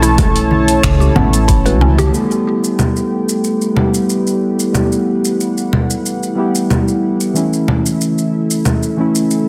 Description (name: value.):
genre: organic downtempo.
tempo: 92 BPM.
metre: 4/4.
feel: straight.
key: E dorian.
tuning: A4 = 435 Hz.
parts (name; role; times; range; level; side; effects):
muted felt-like synth keys; accompaniment; 0.0-9.5 s; E3 to G4; -18 LUFS; equal; chorus, vintage 12-bit sampler grit, sidechain pumping, digital delay.
warm analog pad; sustained chords; 0.0-9.5 s; C#4 to A5; -24 LUFS; equal; chorus, sidechain pumping.
mallet-like synth pluck; arpeggios; 0.0-2.1 s; B3 to B4; -24 LUFS; equal; chorus, phaser, digital delay.
upright bass; bass; 0.0-2.1 s; A1 to C#2; -16 LUFS; equal; tube saturation.
deep house drum kit; drums; 0.0-9.4 s; congas, finger snaps, hi-hat, shaker; -20 LUFS; equal; overdrive, soft clipping on snare.
bongos and congas; percussion; 0.0-2.1 s; none; -25 LUFS; equal; none.
quartz singing bowl; texture; 0.0-9.5 s; A3 to A4; -28 LUFS; equal; none.
electronic kick drum; drums; 0.2-1.6 s; none; -17 LUFS; equal; overdrive.
room: moderate echo chamber reverb, RT60 1.6 s.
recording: dense, heavily limited modern master.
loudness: -15 LUFS.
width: mono.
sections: 0.0-2.1 A section; 2.1-9.5 B section.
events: filter sweep on analog synth pad 2.1-9.5.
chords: 0.0 A; 2.1 Em; 7.4 A.